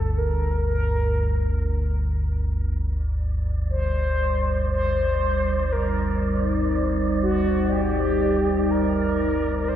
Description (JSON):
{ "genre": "dark ambient drone", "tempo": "60 BPM", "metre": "4/4", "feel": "straight", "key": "unclear", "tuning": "A4 = 443 Hz", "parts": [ { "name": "mellow horn-like synth lead", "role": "melody", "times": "0.0-9.8 s", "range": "F#4 to C5", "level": "-27 LUFS", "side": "left 1 dB", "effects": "wide subtle chorus, dub echo" }, { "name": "deep rumbling drone", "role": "drone", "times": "0.0-9.8 s", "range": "G1 to D2", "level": "-24 LUFS", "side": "equal", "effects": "built-in reverb, lush chorus" }, { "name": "deep dark ambient pad", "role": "sustained chords", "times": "3.9-9.8 s", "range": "G3 to C5", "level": "-25 LUFS", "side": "equal", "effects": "chorus, built-in reverb" }, { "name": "wind-like tuned noise texture", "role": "texture", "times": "3.5-9.8 s", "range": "D5", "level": "-31 LUFS", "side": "right 5 dB", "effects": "built-in reverb" } ], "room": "wet echo chamber reverb, RT60 2.5 s", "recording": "echo-heavy mix, nothing above 11.0 kHz, faint mains hum", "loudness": "-21 LUFS", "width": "side -10 dB against mid", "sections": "0.0-9.8 A section", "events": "fade-out 8.0-9.8", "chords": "0.0 Gm; 2.7 Cm/G" }